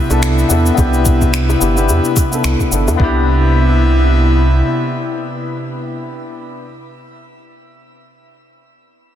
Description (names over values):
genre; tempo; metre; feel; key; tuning
sunset chillout; 108 BPM; 4/4; swing 57% on 16ths; C major; A4 = 440 Hz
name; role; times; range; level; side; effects
airy breathy pad; sustained chords; 0.0-6.0 s; C3 to E4; -18 LUFS; left 1 dB; chorus, shimmer reverb
clear concert grand piano; accompaniment; 0.1-6.7 s; B3 to A4; -20 LUFS; left 2 dB; auto-pan, low-pass filter, tape echo, shimmer reverb
round analog bass; bass; 0.1-4.6 s; G1 to E2; -14 LUFS; equal; tube saturation
electronic shaker and finger snaps; drums; 0.1-3.0 s; none; -22 LUFS; left 1 dB; soft clipping on snare
bongos; percussion; 0.1-3.0 s; none; -26 LUFS; left 3 dB; none
electronic kick drum; drums; 0.8-3.1 s; none; -16 LUFS; right 1 dB; none
room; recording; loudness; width
light reverb, digital ambience; dense, heavily limited modern master; -12 LUFS; side -11 dB against mid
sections
0.0-3.0 A section; 3.0-5.2 B section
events
none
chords
0.0 Cmaj7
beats
0.22 | 0.78 1.33 1.89 2.44 | 3.00 3.55 4.11 4.67